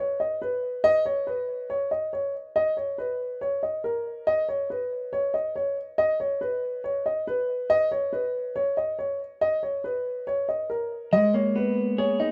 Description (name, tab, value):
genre	hip hop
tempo	140 BPM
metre	4/4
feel	half-time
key	G# minor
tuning	A4 = 441 Hz
part	dark concert grand piano	melody	0.0-12.3 s	A#4 to D#5	-27 LUFS	equal	none
part	clean electric guitar	accompaniment	11.1-12.3 s	G#3 to G#4	-26 LUFS	equal	none
room	small room ambience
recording	rough home demo mix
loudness	-27 LUFS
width	mono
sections	0.0-11.1 A section; 11.1-12.3 B section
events	none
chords	0.0 N.C.; 11.1 G#madd9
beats	0.41 | 0.84 1.27 1.70 2.13 | 2.56 2.98 3.41 3.84 | 4.27 4.70 5.13 5.55 | 5.98 6.41 6.84 7.27 | 7.70 8.13 8.55 8.98 | 9.41 9.84 10.27 10.70 | 11.13 11.55 11.98